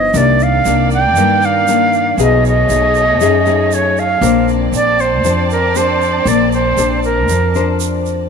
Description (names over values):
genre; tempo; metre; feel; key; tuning
bossa nova; 118 BPM; 4/4; straight; Bb major; A4 = 441 Hz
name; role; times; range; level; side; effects
silver concert flute; melody; 0.0-7.8 s; Bb4 to G5; -14 LUFS; right 3 dB; none
nylon-string guitar; accompaniment; 0.0-8.3 s; F#2 to C5; -16 LUFS; left 10 dB; none
upright bass; bass; 0.0-8.3 s; Bb1 to G2; -18 LUFS; right 2 dB; none
warm symphonic violin section; sustained chords; 0.1-8.3 s; A3 to A5; -23 LUFS; right 4 dB; none
egg shaker; percussion; 0.1-8.3 s; none; -27 LUFS; right 20 dB; none
room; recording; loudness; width
moderate plate reverb, RT60 2.7 s; 1960s-style stereo with parts hard left and right; -11 LUFS; side -6 dB against mid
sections
0.0-8.3 A section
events
none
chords
0.1 Cm9; 2.2 B13; 4.2 Bbmaj9